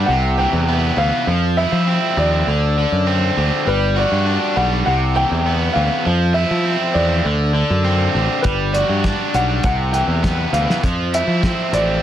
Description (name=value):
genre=indie rock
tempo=100 BPM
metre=4/4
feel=straight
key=unclear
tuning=A4 = 439 Hz
part: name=dark upright piano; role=melody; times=0.0-12.0 s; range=B4 to G5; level=-22 LUFS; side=equal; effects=analog delay
part: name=raw garage guitar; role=riff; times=0.0-12.0 s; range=C3 to F#4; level=-19 LUFS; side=equal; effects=overdrive
part: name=picked electric bass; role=bass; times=0.0-12.0 s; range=G1 to F3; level=-19 LUFS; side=equal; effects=none
part: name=cloth-damped thuddy drum kit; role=drums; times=8.4-11.9 s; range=hi-hat, kick drum, snare drum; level=-21 LUFS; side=equal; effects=none
room=light reverb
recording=none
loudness=-15 LUFS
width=side -11 dB against mid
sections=0.0-12.0 A section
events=none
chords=0.1 Cmaj7; 1.3 F5; 2.5 D7; 3.7 Gmaj7; 4.9 Cmaj7; 6.1 F5; 7.3 D7; 8.4 Gmaj7; 9.6 Cmaj7; 10.8 Fmaj7